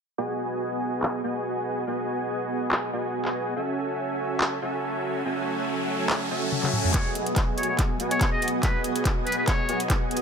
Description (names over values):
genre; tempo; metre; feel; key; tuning
future bass; 142 BPM; 4/4; swing 54% on 16ths, half-time; unclear; A4 = 440 Hz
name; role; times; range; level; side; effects
dense compressed supersaw; riff; 0.2-10.2 s; B3 to G#5; -27 LUFS; right 1 dB; sidechain pumping, low-pass filter, digital delay
trap drum kit; drums; 1.0-10.2 s; handclaps, hi-hat, toms; -28 LUFS; left 1 dB; low-pass filter on snare, low-pass filter on toms, low-pass filter on hats
shimmering ambient pad; sustained chords; 4.7-10.2 s; F#3 to G#5; -34 LUFS; equal; chorus, built-in reverb, sidechain pumping
riser; sound effects; 4.3-6.9 s; none; -33 LUFS; left 2 dB; none
trumpet with metal mute; melody; 6.9-9.8 s; B4 to D#5; -29 LUFS; left 1 dB; sidechain pumping, low-pass filter, digital delay
electronic kick drum; drums; 6.9-10.0 s; none; -25 LUFS; equal; none
room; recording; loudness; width
moderate digital room reverb, RT60 1.1 s; none; -24 LUFS; side -6 dB against mid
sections
0.2-6.9 A section; 6.9-10.2 B section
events
filter sweep on drum 0.2-6.9; riser 4.3-6.9; drum fill 6.5-6.9, 6.9-10.2; build-up 6.9-10.2; filter sweep on supersaw synth 6.9-10.2; filter sweep on muted trumpet 6.9-10.2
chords
0.2 G#m7; 3.6 F#m9; 6.9 G#m7